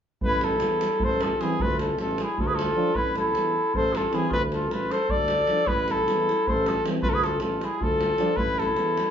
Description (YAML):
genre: balkan folk, Balkan brass band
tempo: 310 BPM (eighths)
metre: 7/8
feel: straight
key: A harmonic minor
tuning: A4 = 441 Hz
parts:
  - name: clear flugelhorn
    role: melody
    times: 0.2-9.1 s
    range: G#4 to D5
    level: -26 LUFS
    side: left 1 dB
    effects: none
  - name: warm clarinet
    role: second line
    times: 0.2-9.1 s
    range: E4 to A4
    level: -28 LUFS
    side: right 1 dB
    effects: none
  - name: warm tuba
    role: bass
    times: 0.2-9.0 s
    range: A1 to E2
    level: -31 LUFS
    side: equal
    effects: none
  - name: davul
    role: percussion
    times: 0.2-9.1 s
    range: none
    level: -30 LUFS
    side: right 1 dB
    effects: none
  - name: clear trombone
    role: accompaniment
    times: 1.4-8.3 s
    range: C4 to D4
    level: -33 LUFS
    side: left 4 dB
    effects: none
  - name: mellow euphonium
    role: accompaniment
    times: 1.4-8.3 s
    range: E3 to F3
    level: -32 LUFS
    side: right 4 dB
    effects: none
room: wet small room reverb, RT60 0.6 s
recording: band playing live in one room, nothing above 7.5 kHz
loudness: -22 LUFS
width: side -8 dB against mid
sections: 0.2-9.1 A section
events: none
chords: 0.2 A5